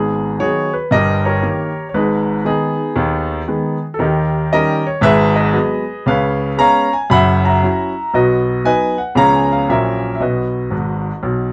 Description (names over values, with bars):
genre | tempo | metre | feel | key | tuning
jazz, stride piano | 116 BPM | 4/4 | swing 66% on 8ths | unclear | A4 = 440 Hz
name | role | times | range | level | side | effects
clear grand piano | solo | 0.0-11.5 s | F#1 to B5 | -16 LUFS | equal | none
room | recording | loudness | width
moderate studio reverb, RT60 0.7 s | dark, warm production | -16 LUFS | mono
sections
0.0-11.5 A section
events
grand piano fill 10.7-11.5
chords
0.0 G#m7; 0.9 D#7/G; 1.9 G#m; 4.0 D#7; 5.0 G#m7; 6.1 C#7; 7.1 F#7; 8.1 B; 9.2 C#7; 9.7 F#7/A#; 10.2 B